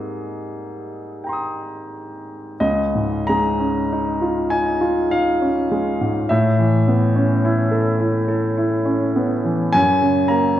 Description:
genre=classical, impressionist solo piano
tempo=43-54 BPM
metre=3/4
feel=rubato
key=unclear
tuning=A4 = 444 Hz
part: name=warm baby grand piano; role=solo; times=0.0-10.6 s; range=Db2 to Eb6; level=-17 LUFS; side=equal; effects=none
room=moderate scoring stage reverb, RT60 1.6 s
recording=dark, warm production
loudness=-16 LUFS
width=side -12 dB against mid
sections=0.0-2.6 A section; 2.6-10.6 B section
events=none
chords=0.0 Abmaj9; 2.6 Dbadd9; 6.3 Aadd9; 9.7 Gb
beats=1.24 | 2.61 3.92 5.12 | 6.30 7.44 8.58 | 9.72

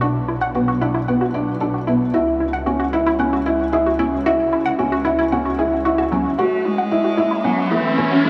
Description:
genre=piano and strings electronica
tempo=113 BPM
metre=4/4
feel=straight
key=F# minor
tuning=A4 = 440 Hz
part: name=analog pluck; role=arpeggios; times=0.0-8.3 s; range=F#3 to F#5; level=-26 LUFS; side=equal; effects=chorus, shimmer reverb, digital delay
part: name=felt-muted upright piano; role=riff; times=0.0-8.3 s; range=A3 to F#4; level=-21 LUFS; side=equal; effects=low-pass filter, shimmer reverb, digital delay
part: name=muted symphonic double bass section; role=bass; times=0.0-8.3 s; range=F#1 to C#2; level=-29 LUFS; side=equal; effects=high-pass filter
part: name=warm cello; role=melody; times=6.4-8.3 s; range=E3 to A3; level=-24 LUFS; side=equal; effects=shimmer reverb, digital delay
part: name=riser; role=sound effects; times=7.1-8.3 s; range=none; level=-25 LUFS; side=equal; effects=none
room=moderate huge ambient reverb, RT60 6.0 s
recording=none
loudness=-19 LUFS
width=mono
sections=0.0-6.4 A section; 6.4-8.3 B section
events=build-up 6.4-8.3; riser 7.1-8.3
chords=0.0 Bm; 2.1 C#m; 6.4 F#m7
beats=| 0.01 0.55 1.08 1.61 | 2.14 2.67 3.20 3.73 | 4.26 4.79 5.33 5.86 | 6.39 6.92 7.45 7.98

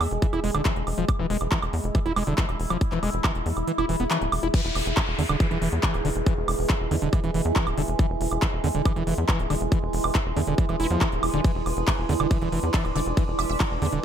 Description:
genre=psychedelic trance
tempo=139 BPM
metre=4/4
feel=straight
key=unclear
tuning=A4 = 440 Hz
part: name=overtone-sweeping drone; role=sustained chords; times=0.0-14.0 s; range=G#3 to G#4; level=-32 LUFS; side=right 1 dB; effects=chorus, built-in reverb, sidechain pumping
part: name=tight sequencer bass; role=bass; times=0.0-14.0 s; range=D1 to E2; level=-28 LUFS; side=equal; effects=none
part: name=big-room dance drum kit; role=drums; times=0.0-14.0 s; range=crash cymbal, handclaps, hi-hat, ride cymbal, woodblock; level=-30 LUFS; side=right 2 dB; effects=none
part: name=screaming distorted acid line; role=riff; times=0.2-14.0 s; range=D3 to E4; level=-29 LUFS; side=moving between left 6 dB and right 6 dB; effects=distortion, chorus, auto-pan, cassette tape, sidechain pumping, tape echo
part: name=electronic kick drum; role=drums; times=0.2-13.7 s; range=none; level=-24 LUFS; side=equal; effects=none
part: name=downlifter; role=sound effects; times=4.5-8.0 s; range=none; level=-35 LUFS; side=left 1 dB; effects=none
part: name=granular cloud pad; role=texture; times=5.2-14.0 s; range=E4 to E5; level=-32 LUFS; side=right 2 dB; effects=built-in reverb, sidechain pumping
part: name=resonant blip pluck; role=second line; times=12.7-13.6 s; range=D5 to E5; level=-40 LUFS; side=right 7 dB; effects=phaser, sidechain pumping, high-pass filter, tape echo
room=light reverb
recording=none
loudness=-22 LUFS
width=side -9 dB against mid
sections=0.0-4.5 A section; 4.5-14.0 B section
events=kick drops out 3.7-4.5; drop 4.5-14.0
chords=0.0 E5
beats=0.22 0.65 | 1.08 1.52 1.95 2.38 | 2.81 3.24 3.67 4.11 | 4.54 4.97 5.40 5.83 | 6.26 6.70 7.13 7.56 | 7.99 8.42 8.86 9.29 | 9.72 10.15 10.58 11.01 | 11.45 11.88 12.31 12.74 | 13.17 13.60 14.04

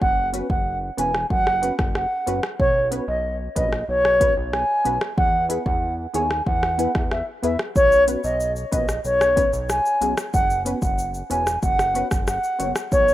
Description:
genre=dancehall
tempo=93 BPM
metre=4/4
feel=straight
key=B major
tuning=A4 = 440 Hz
part: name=baroque flute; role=melody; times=0.0-13.1 s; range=C#5 to G#5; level=-20 LUFS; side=equal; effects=tape echo
part: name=fat analog bass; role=bass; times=0.0-13.1 s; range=E1 to E2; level=-29 LUFS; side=equal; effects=none
part: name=afro-pop drum kit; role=drums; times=0.0-13.1 s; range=hi-hat, kick drum, rim click, shaker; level=-25 LUFS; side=equal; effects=none
part: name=punchy chord stab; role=accompaniment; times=0.3-12.7 s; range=B3 to C#5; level=-28 LUFS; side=left 1 dB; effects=chorus
room=light reverb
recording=rough home demo mix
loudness=-19 LUFS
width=side -14 dB against mid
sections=0.0-13.1 A section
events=none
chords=0.0 F#sus4; 2.6 Bsus2; 5.2 E; 7.8 Bsus2; 10.3 F#sus4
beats=| 0.02 0.66 1.31 1.95 | 2.60 3.24 3.89 4.53 | 5.18 5.82 6.47 7.11 | 7.76 8.40 9.05 9.69 | 10.34 10.98 11.63 12.27 | 12.92

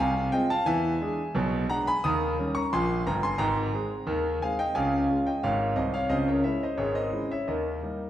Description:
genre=ragtime piano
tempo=88 BPM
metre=2/4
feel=straight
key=unclear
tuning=A4 = 441 Hz
part: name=clear concert grand piano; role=solo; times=0.0-8.1 s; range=G1 to Eb6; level=-24 LUFS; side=equal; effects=none
room=wet recital hall reverb, RT60 1.6 s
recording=recorded in a church or concert hall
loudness=-24 LUFS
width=side -12 dB against mid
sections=0.0-8.1 A section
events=none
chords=0.0 Fm; 0.7 E7; 2.0 Eb7; 3.4 Ab; 4.8 Db; 6.1 Dbm; 7.5 Eb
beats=0.00 | 0.68 1.36 | 2.04 2.72 | 3.40 4.08 | 4.76 5.44 | 6.13 6.81 | 7.50

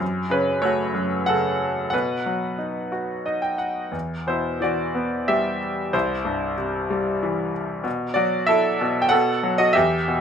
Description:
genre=classical, lyrical solo piano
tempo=86-98 BPM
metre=3/4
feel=rubato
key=unclear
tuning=A4 = 438 Hz
part: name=bright concert grand piano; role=solo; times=0.0-10.2 s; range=C2 to G5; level=-20 LUFS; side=equal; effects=none
room=light reverb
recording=none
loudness=-20 LUFS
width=side -7 dB against mid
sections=0.0-10.2 A section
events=grand piano fill 2.9-3.9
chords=0.0 F#m; 1.9 B; 3.9 Emadd9; 5.9 C; 7.9 B7sus4; 9.1 B5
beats=| 0.01 0.64 1.28 | 1.93 2.59 3.25 | 3.94 4.62 5.29 | 5.94 6.58 7.23 | 7.86 8.48 9.11 | 9.75

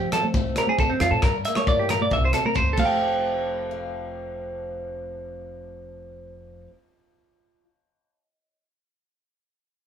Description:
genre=highlife guitar band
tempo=136 BPM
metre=4/4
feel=straight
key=F major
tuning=A4 = 439 Hz
part: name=picked old ladder-braced acoustic guitar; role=accompaniment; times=0.0-7.6 s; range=F2 to F5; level=-31 LUFS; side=left 3 dB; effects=none
part: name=clean electric guitar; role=arpeggios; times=0.0-6.7 s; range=C4 to G5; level=-23 LUFS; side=right 2 dB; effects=none
part: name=upright bass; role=bass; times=0.0-6.7 s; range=F1 to F3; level=-31 LUFS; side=equal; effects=none
part: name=tight funk drum kit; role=drums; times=0.1-2.9 s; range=crash cymbal, hi-hat, kick drum, rim click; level=-27 LUFS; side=left 1 dB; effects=none
part: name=congas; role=percussion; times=0.1-3.2 s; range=none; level=-30 LUFS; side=right 3 dB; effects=none
part: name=shekere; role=percussion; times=0.1-3.2 s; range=none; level=-35 LUFS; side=left 3 dB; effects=none
room=moderate studio ambience, RT60 0.4 s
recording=band playing live in one room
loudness=-21 LUFS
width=side -8 dB against mid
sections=0.0-3.0 A section; 3.0-6.5 B section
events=clean electric guitar solo 0.0-3.0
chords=0.0 Fadd9; 1.2 Gm; 2.1 C13; 2.8 Fadd9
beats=0.34 0.78 | 1.22 1.67 2.11 2.55 | 3.00 3.44 3.88 4.32 | 4.77 5.21 5.65 6.09

